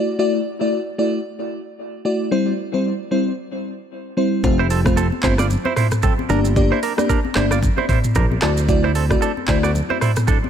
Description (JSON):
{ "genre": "afrobeats", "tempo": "113 BPM", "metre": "4/4", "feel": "swing 58% on 16ths", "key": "unclear", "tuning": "A4 = 440 Hz", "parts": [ { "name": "crystalline FM electric piano", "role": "accompaniment", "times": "0.0-9.7 s", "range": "G3 to D5", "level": "-21 LUFS", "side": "left 1 dB", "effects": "chorus, dub echo" }, { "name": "fingered electric bass", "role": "bass", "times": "4.4-9.8 s", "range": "F1 to D2", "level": "-20 LUFS", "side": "equal", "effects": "none" }, { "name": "afro-pop drum kit", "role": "drums", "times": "4.4-10.4 s", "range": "handclaps, hi-hat, kick drum, rim click, shaker, toms", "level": "-20 LUFS", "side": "equal", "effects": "none" }, { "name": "congas", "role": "percussion", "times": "4.4-10.5 s", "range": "none", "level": "-29 LUFS", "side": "left 7 dB", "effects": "dub echo" }, { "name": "direct-recorded clean electric guitar", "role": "riff", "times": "4.6-10.4 s", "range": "C4 to D5", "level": "-23 LUFS", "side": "right 8 dB", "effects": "dub echo" } ], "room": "light reverb", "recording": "echo-heavy mix", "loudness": "-16 LUFS", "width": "side -8 dB against mid", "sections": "0.0-10.5 A section", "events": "none", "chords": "0.0 Dadd9; 2.3 C; 4.4 F; 6.3 Gm; 8.4 Dadd9" }